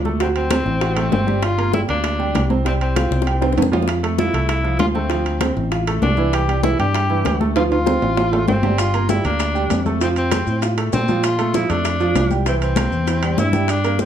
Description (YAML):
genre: latin, salsa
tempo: 196 BPM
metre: 4/4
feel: straight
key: unclear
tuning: A4 = 440 Hz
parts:
  - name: fingered electric bass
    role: bass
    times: 0.0-14.1 s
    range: G1 to Bb2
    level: -21 LUFS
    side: left 1 dB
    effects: none
  - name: bright baby grand piano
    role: accompaniment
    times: 0.1-14.1 s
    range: E3 to G5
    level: -22 LUFS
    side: right 5 dB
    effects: none
  - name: bongos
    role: percussion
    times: 0.1-14.1 s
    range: none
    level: -27 LUFS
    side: left 7 dB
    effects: none
  - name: congas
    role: percussion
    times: 0.1-14.1 s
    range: none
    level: -26 LUFS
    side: left 4 dB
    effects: none
  - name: bright tenor saxophone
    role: melody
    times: 0.2-14.1 s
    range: C4 to G4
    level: -23 LUFS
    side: left 1 dB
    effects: none
  - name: timbales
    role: percussion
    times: 0.2-14.1 s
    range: none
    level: -26 LUFS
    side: right 5 dB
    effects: none
  - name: maracas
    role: percussion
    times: 8.8-14.1 s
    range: none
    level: -36 LUFS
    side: left 7 dB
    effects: none
room: moderate large studio reverb, RT60 0.8 s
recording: small room ambience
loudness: -16 LUFS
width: side -9 dB against mid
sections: 0.0-14.1 A section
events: drum fill 3.1-3.9, 7.6-8.8, 13.1-13.7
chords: 0.2 D7; 1.4 Gm7; 2.7 Csus4; 3.9 Fmaj7; 5.1 Dm7; 6.3 C; 7.6 Dm7; 8.8 Gm7; 10.0 F; 11.2 Bbmaj7; 12.5 C7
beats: | 0.20 0.51 0.82 1.12 | 1.43 1.74 2.04 2.35 | 2.66 2.96 3.27 3.58 | 3.88 4.19 4.49 4.80 | 5.11 5.41 5.72 6.03 | 6.33 6.64 6.95 7.25 | 7.56 7.87 8.17 8.48 | 8.79 9.09 9.40 9.70 | 10.01 10.32 10.62 10.93 | 11.24 11.54 11.85 12.16 | 12.46 12.77 13.07 13.38 | 13.69 13.99